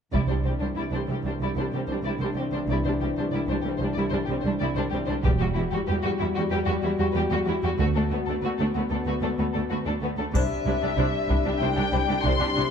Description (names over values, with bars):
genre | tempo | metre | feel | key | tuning
cinematic, epic orchestral film score | 94 BPM | 4/4 | straight | unclear | A4 = 440 Hz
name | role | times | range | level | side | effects
dark symphonic violin section | melody | 0.1-12.7 s | F#4 to C6 | -32 LUFS | left 6 dB | none
rich symphonic violin section | second line | 0.1-12.6 s | B3 to C5 | -33 LUFS | left 2 dB | none
rich symphonic viola section | accompaniment | 0.1-12.6 s | G3 to D4 | -31 LUFS | equal | none
mellow French horn section | sustained chords | 0.1-12.7 s | E3 to G4 | -30 LUFS | left 4 dB | none
clear symphonic cello section | bass | 0.1-12.6 s | C2 to E2 | -29 LUFS | right 4 dB | none
rich symphonic double bass section | bass | 0.1-12.6 s | E1 to D2 | -28 LUFS | right 3 dB | none
solo taiko drums | drums | 0.1-1.4, 5.2-6.5, 10.3-11.6 s | none | -28 LUFS | equal | none
triangle | percussion | 10.4-11.6 s | none | -45 LUFS | left 2 dB | none
room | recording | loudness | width
moderate scoring stage reverb, RT60 1.6 s | dark, warm production | -23 LUFS | side -7 dB against mid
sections
0.1-10.3 A section; 10.3-12.7 B section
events
none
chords
0.1 Cadd9; 5.2 Emadd9; 7.8 D6; 10.3 Cadd9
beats
| 0.13 0.77 1.41 2.05 | 2.68 3.32 3.96 4.60 | 5.24 5.88 6.51 7.15 | 7.79 8.43 9.07 9.71 | 10.34 10.98 11.62 12.26